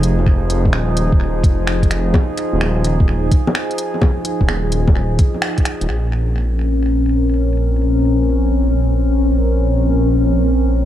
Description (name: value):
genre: future garage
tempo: 128 BPM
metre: 4/4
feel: swing 67% on 16ths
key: Bb minor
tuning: A4 = 437 Hz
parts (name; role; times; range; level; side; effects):
- warbly tape-like pad; sustained chords; 0.0-10.8 s; F3 to Bb4; -20 LUFS; left 1 dB; chorus, built-in reverb, vintage 12-bit sampler grit, sidechain pumping
- dark detuned saw bass; bass; 0.0-10.8 s; Eb1 to Bb1; -16 LUFS; equal; sidechain pumping
- organic electronic drum kit; drums; 0.0-5.9 s; bongos, finger snaps, hi-hat; -23 LUFS; left 1 dB; overdrive, tape echo
- electronic kick drum; drums; 0.3-5.6 s; none; -14 LUFS; equal; none
room: digital ambience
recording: echo-heavy mix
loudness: -14 LUFS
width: side -12 dB against mid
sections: 0.0-5.9 A section; 5.9-10.8 B section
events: band accent 5.4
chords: 0.0 Fm7; 5.9 Bbmadd9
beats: | 0.27 0.74 1.21 1.68 | 2.14 2.61 3.08 3.55 | 4.02 4.49 4.96 5.42 | 5.89 6.36 6.83 7.30 | 7.77 8.24 8.71 9.18 | 9.64 10.11 10.58